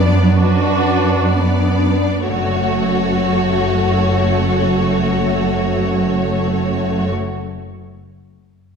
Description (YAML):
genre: classical, slow romantic movement for symphony orchestra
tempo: 34 BPM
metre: 3/4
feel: rubato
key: F# minor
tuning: A4 = 441 Hz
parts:
  - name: clear studio violin section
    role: melody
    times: 0.0-7.1 s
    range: B4 to D5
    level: -24 LUFS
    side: left 4 dB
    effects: none
  - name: rich studio violin section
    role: second line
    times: 0.0-7.1 s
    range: D4 to F#4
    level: -21 LUFS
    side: left 1 dB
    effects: none
  - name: rich studio viola section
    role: accompaniment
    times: 0.0-7.1 s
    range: A3 to D4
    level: -22 LUFS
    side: equal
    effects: none
  - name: concert harp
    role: arpeggios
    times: 0.0-7.4 s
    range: F#2 to C#5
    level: -27 LUFS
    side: left 3 dB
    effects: none
  - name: warm studio cello section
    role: bass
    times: 0.0-7.1 s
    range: F#2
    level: -18 LUFS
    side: right 2 dB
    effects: none
  - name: clear studio double bass section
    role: bass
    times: 2.3-7.1 s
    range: F#1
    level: -22 LUFS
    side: right 2 dB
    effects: none
room: wet scoring stage reverb, RT60 1.7 s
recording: heard from further back in the room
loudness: -14 LUFS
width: side -6 dB against mid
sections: 0.0-2.3 A section; 2.3-7.5 B section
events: slowing down 0.0-2.3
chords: 0.0 Bm/F#; 2.3 F#m